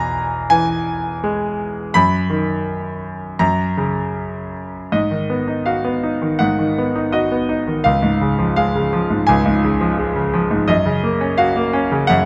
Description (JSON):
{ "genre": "classical, lyrical solo piano", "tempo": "82 BPM", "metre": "4/4", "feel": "uneven beats, rubato", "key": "G# dorian from 4.9 s", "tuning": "A4 = 439 Hz", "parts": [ { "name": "bright concert grand piano", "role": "solo", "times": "0.0-12.3 s", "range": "C#2 to B5", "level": "-18 LUFS", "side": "equal", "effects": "none" } ], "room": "light reverb", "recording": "close, detailed microphones", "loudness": "-18 LUFS", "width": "mono", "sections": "0.0-4.9 A section; 4.9-12.3 B section", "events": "none", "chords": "0.0 E; 1.9 B/F#; 3.4 F#; 4.9 G#m7; 7.9 C#; 10.7 F#", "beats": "0.51 1.24 | 1.95 2.66 3.40 4.17 | 4.93 5.67 6.41 7.14 | 7.85 8.57 9.28 9.99 | 10.69 11.38 12.09" }